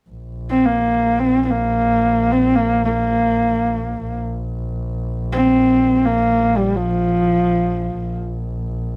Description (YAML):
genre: mongolian traditional, Mongolian folk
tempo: free time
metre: none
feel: none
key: unclear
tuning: A4 = 439 Hz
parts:
  - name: warm double bass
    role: drone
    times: 0.1-9.0 s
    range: Bb1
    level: -26 LUFS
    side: equal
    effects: none
  - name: warm horsehead fiddle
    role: melody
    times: 0.5-8.2 s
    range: F3 to C4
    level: -18 LUFS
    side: equal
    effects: none
room: moderate studio reverb, RT60 0.6 s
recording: dark, warm production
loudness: -18 LUFS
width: mono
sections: 0.1-9.0 A section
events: none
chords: none